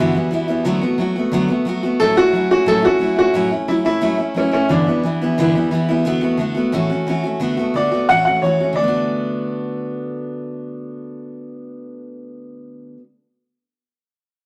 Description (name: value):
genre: rock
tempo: 178 BPM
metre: 4/4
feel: straight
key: D major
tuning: A4 = 440 Hz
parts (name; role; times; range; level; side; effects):
- bright upright piano; melody; 0.0-5.7, 7.8-12.9 s; C#4 to F#5; -19 LUFS; equal; none
- picked steel-string acoustic guitar; accompaniment; 0.0-13.0 s; G2 to F#4; -21 LUFS; equal; none
room: moderate stone room reverb, RT60 1.1 s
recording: rough rehearsal-room recording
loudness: -18 LUFS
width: mono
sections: 0.0-7.4 A section; 7.4-8.8 B section; 8.8-11.5 C section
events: none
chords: 0.0 G6; 0.7 D6; 2.0 A6; 4.7 G6; 6.1 D6; 6.7 A6; 7.4 D6; 8.1 A6; 8.8 D6